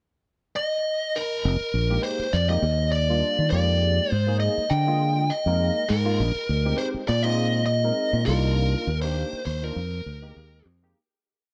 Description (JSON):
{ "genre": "jazz", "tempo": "101 BPM", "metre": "4/4", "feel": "straight", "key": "F dorian", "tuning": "A4 = 440 Hz", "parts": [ { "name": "biting lead guitar", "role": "melody", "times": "0.6-10.7 s", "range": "Bb4 to G5", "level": "-28 LUFS", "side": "equal", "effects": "overdrive" }, { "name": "fingered electric bass", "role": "bass", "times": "1.4-10.9 s", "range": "F1 to Eb3", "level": "-26 LUFS", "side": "equal", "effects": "none" }, { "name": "barky tine electric piano", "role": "accompaniment", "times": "1.9-11.0 s", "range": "G3 to Eb5", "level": "-34 LUFS", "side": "equal", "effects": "overdrive, analog chorus" } ], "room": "light reverb", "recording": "none", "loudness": "-24 LUFS", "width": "mono", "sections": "0.0-1.4 pickup bar; 1.4-11.0 A section", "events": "fade-out 8.6-11.0", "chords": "0.0 N.C.; 1.4 Fm11; 2.6 Ebmaj9; 3.5 Fm11; 6.2 Bb13sus4; 8.3 Cm11; 9.8 Fm11" }